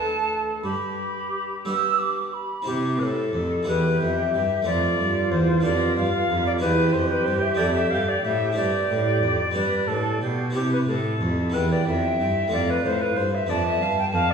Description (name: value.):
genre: classical, baroque-style sonata movement with continuo.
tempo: 61 BPM (dotted quarters).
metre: 6/8.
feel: straight.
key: C major.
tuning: A4 = 437 Hz.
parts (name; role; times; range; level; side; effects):
alto recorder; melody; 0.0-14.3 s; G4 to G5; -25 LUFS; left 3 dB; none.
bright concert flute; second line; 0.0-14.3 s; F4 to E6; -27 LUFS; right 6 dB; none.
harpsichord; accompaniment; 0.0-14.3 s; D2 to A4; -28 LUFS; equal; none.
rich cello; bass; 0.0-14.3 s; D2 to G3; -27 LUFS; right 1 dB; none.
room: wet recital hall reverb, RT60 1.6 s.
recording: recorded in a church or concert hall, small room ambience.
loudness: -21 LUFS.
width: side -6 dB against mid.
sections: 0.0-2.7 A section; 2.7-14.3 A section.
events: none.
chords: 0.0 D; 0.6 G; 2.7 C; 3.7 Em; 4.7 F; 5.6 G7/F; 6.6 C/E; 7.6 Dm7/F; 9.6 G; 10.5 C; 11.5 Em; 12.5 F; 13.5 G7/F.